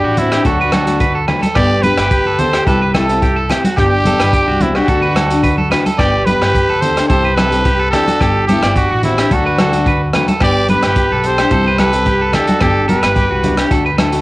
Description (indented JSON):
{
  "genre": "highlife guitar band",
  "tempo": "108 BPM",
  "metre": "4/4",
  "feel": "straight",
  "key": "G major",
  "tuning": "A4 = 440 Hz",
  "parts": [
    { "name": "growling trumpet", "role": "melody", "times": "0.0-13.7 s", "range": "E4 to D5", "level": "-16 LUFS", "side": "right 1 dB", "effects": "cassette tape" },
    { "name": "breathy alto saxophone", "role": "second line", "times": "0.0-13.7 s", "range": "C4 to B4", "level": "-22 LUFS", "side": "left 2 dB", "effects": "cassette tape" },
    { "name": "electric guitar at the edge of break-up", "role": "arpeggios", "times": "0.0-14.2 s", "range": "F#4 to D5", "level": "-19 LUFS", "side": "right 2 dB", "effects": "cassette tape" },
    { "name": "upright bass", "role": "bass", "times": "0.0-14.2 s", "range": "G1 to D2", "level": "-19 LUFS", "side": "equal", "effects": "none" },
    { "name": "nylon-string guitar", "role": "accompaniment", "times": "0.2-14.2 s", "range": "E3 to G4", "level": "-20 LUFS", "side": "left 4 dB", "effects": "cassette tape" },
    { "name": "crunchy breakbeat drum kit", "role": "drums", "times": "0.2-14.2 s", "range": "hi-hat, kick drum, rim click", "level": "-19 LUFS", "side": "equal", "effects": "none" },
    { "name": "congas", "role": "percussion", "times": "0.2-14.1 s", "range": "none", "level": "-20 LUFS", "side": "right 1 dB", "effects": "none" },
    { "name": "agogo bells", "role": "percussion", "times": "0.3-14.1 s", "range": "none", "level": "-26 LUFS", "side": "equal", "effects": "none" }
  ],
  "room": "little or no reverb",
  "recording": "home recording on cassette",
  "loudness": "-11 LUFS",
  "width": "side -20 dB against mid",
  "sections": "0.0-6.0 A section; 6.0-14.2 A section",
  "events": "none",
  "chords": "0.4 D; 1.6 G; 2.7 C; 3.8 G; 4.9 D; 6.0 G; 7.1 C; 8.2 G; 9.3 D; 10.4 G; 11.5 C; 12.6 G"
}